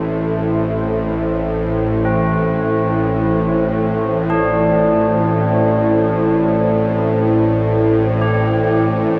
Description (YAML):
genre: dark ambient drone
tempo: 54 BPM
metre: 4/4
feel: straight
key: A minor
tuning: A4 = 440 Hz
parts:
  - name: dark analog pad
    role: sustained chords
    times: 0.0-9.2 s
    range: E4 to C5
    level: -20 LUFS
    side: equal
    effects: chorus
  - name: tubular bells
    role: arpeggios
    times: 0.0-9.2 s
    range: C4 to G4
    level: -23 LUFS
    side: equal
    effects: tape echo
  - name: bowed-like drone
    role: drone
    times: 0.0-9.2 s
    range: A1 to A2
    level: -20 LUFS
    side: equal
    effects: built-in reverb
room: wet cathedral reverb, RT60 6.2 s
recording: in a vast, echoing space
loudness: -16 LUFS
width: mono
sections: 0.0-9.2 A section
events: none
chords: 0.0 A5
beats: | 0.94 2.06 3.17 4.29 | 5.40 6.53 7.65 8.77